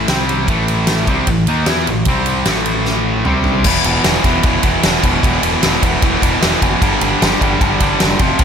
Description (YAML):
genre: hard rock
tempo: 151 BPM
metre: 4/4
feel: straight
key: unclear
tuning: A4 = 440 Hz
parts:
  - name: high-gain distorted guitar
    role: riff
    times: 0.0-8.4 s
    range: E2 to E4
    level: -15 LUFS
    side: equal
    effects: distortion
  - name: growling picked electric bass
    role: bass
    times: 0.0-8.4 s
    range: E1 to E2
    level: -21 LUFS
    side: equal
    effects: overdrive
  - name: huge arena drum kit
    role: drums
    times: 0.1-8.4 s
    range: crash cymbal, kick drum, ride cymbal, snare drum, toms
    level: -16 LUFS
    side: equal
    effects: none
room: little or no reverb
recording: none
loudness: -12 LUFS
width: side -7 dB against mid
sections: 0.0-3.7 A section; 3.7-8.4 B section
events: drum fill 2.9-3.7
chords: 0.1 C5; 0.5 A5; 2.1 C5; 2.5 A5; 3.3 C5; 3.7 E5; 6.8 G5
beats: 0.08 | 0.48 0.88 1.27 1.67 | 2.07 2.47 2.86 3.26 | 3.66 4.05 4.45 4.85 | 5.24 5.64 6.03 6.43 | 6.82 7.22 7.61 8.01 | 8.40